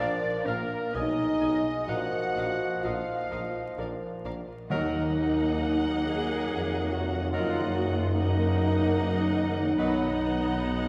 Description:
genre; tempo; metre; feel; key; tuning
classical, slow romantic movement for symphony orchestra; 61-75 BPM; 3/4; rubato; Eb minor; A4 = 440 Hz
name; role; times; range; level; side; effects
muted chamber violin section; melody; 0.0-10.9 s; F5 to Ab5; -42 LUFS; equal; none
bright oboe; second line; 0.0-10.1 s; Bb4 to Gb5; -41 LUFS; equal; none
dark clarinet; second line; 0.0-10.9 s; D#4 to F5; -40 LUFS; equal; none
mellow hollow silver concert flute; second line; 0.0-10.2 s; Bb4 to Gb5; -40 LUFS; equal; none
muted studio violin section; second line; 0.0-10.9 s; Bb4 to Gb5; -43 LUFS; equal; none
clear bassoon; accompaniment; 0.0-10.1 s; F3 to Ab3; -40 LUFS; equal; none
muted chamber viola section; accompaniment; 0.0-10.9 s; Bb3 to F5; -41 LUFS; equal; none
mellow French horn section; sustained chords; 0.0-10.9 s; Bb3 to Gb4; -37 LUFS; equal; none
concert harp; arpeggios; 0.0-10.9 s; Gb2 to Eb6; -40 LUFS; equal; none
clear tuba; bass; 0.0-10.9 s; F1 to Eb2; -37 LUFS; equal; none
muted chamber cello section; bass; 0.0-10.9 s; Bb2 to Ab4; -35 LUFS; equal; none
muted chamber double bass section; bass; 0.0-10.9 s; Bb1 to Gb2; -35 LUFS; equal; none
warm trombone section; sustained chords; 4.7-10.9 s; Eb3 to F#3; -41 LUFS; equal; none
timpani; percussion; 4.7-6.0 s; Eb3; -39 LUFS; equal; none
room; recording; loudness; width
wet church reverb, RT60 3.2 s; recorded in a church or concert hall, vinyl crackle; -28 LUFS; mono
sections
0.0-4.7 A section; 4.7-10.9 B section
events
none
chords
0.0 Bb; 0.9 Abm/Cb; 1.9 Bbsus4; 3.8 Bb; 4.7 Ebm; 7.3 Ebm/Gb; 9.8 B

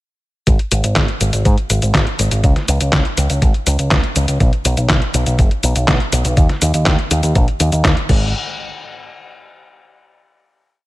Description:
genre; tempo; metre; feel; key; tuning
italo disco; 122 BPM; 4/4; straight; unclear; A4 = 440 Hz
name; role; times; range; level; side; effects
picked electric bass with an envelope filter; bass; 0.5-8.3 s; F#1 to G#2; -16 LUFS; equal; tube saturation, digital delay
detuned 8-bit digital drum machine; drums; 0.5-8.2 s; cabasa, crash cymbal, handclaps, hi-hat, snare drum; -19 LUFS; equal; none
electronic kick drum; drums; 0.5-8.2 s; none; -15 LUFS; equal; none
room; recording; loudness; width
little or no reverb; none; -13 LUFS; side -18 dB against mid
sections
0.5-8.3 verse; 8.3-10.3 final hit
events
none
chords
none

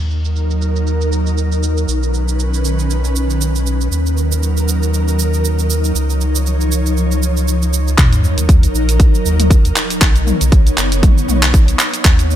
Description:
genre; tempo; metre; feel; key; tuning
afro house; 118 BPM; 4/4; swing 56% on 16ths; Eb minor; A4 = 440 Hz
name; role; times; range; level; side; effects
ethereal airy pad; sustained chords; 0.0-12.4 s; D#3 to Eb5; -20 LUFS; equal; ensemble chorus, built-in reverb, sidechain pumping
warm sub bass; bass; 0.0-12.4 s; F#1 to Eb2; -16 LUFS; equal; tube saturation, sidechain pumping
house drum kit; drums; 0.1-12.4 s; handclaps, hi-hat, shaker, toms; -19 LUFS; right 1 dB; low-pass filter on perc, low-pass filter on hats, low-pass filter on toms, low-pass filter on snare, low-pass filter on cymbals, low-pass filter on room
electronic kick drum; drums; 8.0-12.2 s; none; -10 LUFS; equal; none
sub drop; sound effects; 8.0-10.0 s; none; -21 LUFS; equal; none
room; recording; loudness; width
little or no reverb; none; -12 LUFS; side -11 dB against mid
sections
0.0-8.0 A section; 8.0-12.4 B section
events
drop 8.0-12.4; impact 8.0-10.0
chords
0.0 Ebm; 1.9 Badd9; 3.9 Ebm; 5.9 Dbadd9; 8.0 Ebm; 10.0 Badd9

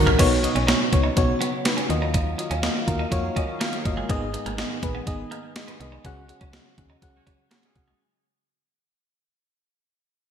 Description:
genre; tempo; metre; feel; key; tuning
1980s-style pop; 123 BPM; 4/4; straight; unclear; A4 = 437 Hz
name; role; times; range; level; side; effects
FM electric piano with auto-pan; accompaniment; 0.0-8.0 s; Ab2 to Gb5; -26 LUFS; left 2 dB; none
sweeping resonant pad; sustained chords; 0.0-8.0 s; C#3 to F5; -34 LUFS; right 2 dB; chorus
slap-like FM bass; bass; 0.0-7.9 s; G1 to F2; -27 LUFS; equal; none
twelve-string electric guitar; riff; 0.1-7.9 s; Ab3 to D#4; -32 LUFS; right 3 dB; wide subtle chorus, ping-pong delay
gated 80s digital drum machine; drums; 0.1-7.9 s; crash cymbal, hi-hat, kick drum, snare drum, toms; -24 LUFS; right 1 dB; gated reverb, gated reverb snare
warm horn section; stabs; 7.1-8.0 s; Gb3 to Ab4; -38 LUFS; left 4 dB; none
room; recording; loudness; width
moderate lush hall reverb, RT60 1.6 s; bright 1980s-style digital production; -21 LUFS; side -8 dB against mid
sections
0.2-8.0 A section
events
drum fill 0.0; fade-out 0.2-8.0; band accent 6.0-8.0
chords
0.2 Badd9; 1.9 Ebmadd9; 4.1 Abm; 6.0 Dbsus4

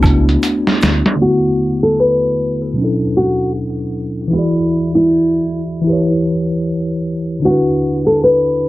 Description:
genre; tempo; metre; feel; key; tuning
lo-fi hip hop; 77 BPM; 4/4; swing 58% on 16ths; D major; A4 = 440 Hz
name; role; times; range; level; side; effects
mellow tine electric piano; accompaniment; 0.0-8.7 s; B2 to D5; -16 LUFS; equal; medium stereo tremolo, low-pass filter
deep dub fingered electric bass; bass; 0.0-1.0 s; C#2 to D2; -15 LUFS; equal; none
lo-fi sampler-style drum kit; drums; 0.0-1.2 s; hi-hat, kick drum, snare drum; -14 LUFS; equal; none
egg shaker and woodblock; percussion; 0.0-1.0 s; none; -24 LUFS; right 3 dB; none
nylon-string guitar; melody; 1.2-8.7 s; E4 to B4; -15 LUFS; equal; low-pass filter
room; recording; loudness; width
moderate studio reverb, RT60 0.5 s; dry, gritty hardware recording, cassette tape, low-pass filter; -13 LUFS; side -17 dB against mid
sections
0.0-1.2 A section; 1.2-8.7 B section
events
drum fill 0.4-1.2; filter sweep 1.2-8.7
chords
0.0 D6; 2.8 Bm11; 4.3 E7; 5.9 Em6; 7.4 D6

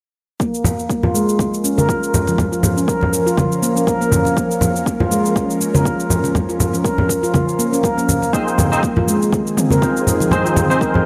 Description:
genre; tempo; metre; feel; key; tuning
afro house; 121 BPM; 4/4; swing 56% on 16ths; Bb minor; A4 = 441 Hz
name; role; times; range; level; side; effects
ethereal airy pad; sustained chords; 1.6-11.1 s; Eb3 to Bb4; -27 LUFS; equal; ensemble chorus, built-in reverb, sidechain pumping
handpan; arpeggios; 0.4-10.9 s; F3 to Bb4; -21 LUFS; equal; sidechain pumping, low-pass filter, digital delay
electronic cabasa and toms; drums; 0.4-10.9 s; none; -27 LUFS; equal; none
electronic kick drum; drums; 0.4-10.9 s; none; -24 LUFS; equal; overdrive, high-pass filter on kick
congas; percussion; 0.6-11.0 s; none; -21 LUFS; equal; none
barky tine electric piano; stabs; 8.3-11.1 s; C4 to C5; -22 LUFS; equal; ensemble chorus, sidechain pumping, digital delay
room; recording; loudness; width
light reverb, digital ambience; none; -17 LUFS; mono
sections
0.4-11.1 A section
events
none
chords
0.4 Bbm; 8.3 Ab

